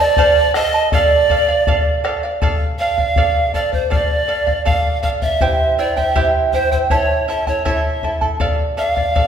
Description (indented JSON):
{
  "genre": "andean folk, Andean ensemble",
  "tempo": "80 BPM",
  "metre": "2/4",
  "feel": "straight",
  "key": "D minor",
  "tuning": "A4 = 437 Hz",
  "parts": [
    { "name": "breathy bright pan flute", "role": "melody", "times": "0.0-9.3 s", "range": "C5 to F5", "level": "-17 LUFS", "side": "right 2 dB", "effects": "none" },
    { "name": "breathy mellow quena", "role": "second line", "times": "0.0-2.0 s", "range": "D5 to Eb5", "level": "-22 LUFS", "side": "left 2 dB", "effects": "none" },
    { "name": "charango", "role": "accompaniment", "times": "0.0-9.3 s", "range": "E4 to A5", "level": "-19 LUFS", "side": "right 2 dB", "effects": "none" },
    { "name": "bombo", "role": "percussion", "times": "0.2-9.3 s", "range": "none", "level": "-20 LUFS", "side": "left 2 dB", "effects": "none" }
  ],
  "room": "wet recital hall reverb, RT60 1.5 s",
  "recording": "recorded in a church or concert hall",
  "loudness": "-14 LUFS",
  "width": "side -8 dB against mid",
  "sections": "0.0-2.4 A section; 2.4-9.3 B section",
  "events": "none",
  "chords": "0.0 F7; 0.9 Dm; 5.4 C; 6.9 A; 8.4 Dm"
}